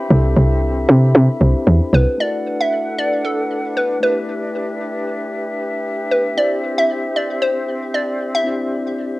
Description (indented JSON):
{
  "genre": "amapiano",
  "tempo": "115 BPM",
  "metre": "4/4",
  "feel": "swing 55% on 16ths",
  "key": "unclear",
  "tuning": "A4 = 440 Hz",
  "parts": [
    { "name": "mellow tine electric piano", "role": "accompaniment", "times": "0.0-9.2 s", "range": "A3 to D5", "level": "-25 LUFS", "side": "left 3 dB", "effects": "none" },
    { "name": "mellow small flute group", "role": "sustained chords", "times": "0.0-9.2 s", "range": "C4 to B5", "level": "-24 LUFS", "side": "equal", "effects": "none" },
    { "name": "woody log drum bass", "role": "bass", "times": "0.1-2.1 s", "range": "C2 to C3", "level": "-12 LUFS", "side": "equal", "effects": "none" },
    { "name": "hollow square pluck", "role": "melody", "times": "1.9-9.2 s", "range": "A4 to E5", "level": "-19 LUFS", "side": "equal", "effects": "chorus, tape echo" }
  ],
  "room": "light reverb",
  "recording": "home recording on cassette",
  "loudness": "-15 LUFS",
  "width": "side -20 dB against mid",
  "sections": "0.0-2.2 A section; 2.2-9.2 B section",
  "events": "drop 0.0-2.2",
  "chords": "0.0 Cmaj7; 2.2 D6; 4.0 G6; 6.4 C",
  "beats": "| 0.10 0.63 1.15 1.67 | 2.19 2.71 3.23 3.76 | 4.28 4.80 5.32 5.84 | 6.37 6.89 7.41 7.93 | 8.45 8.97"
}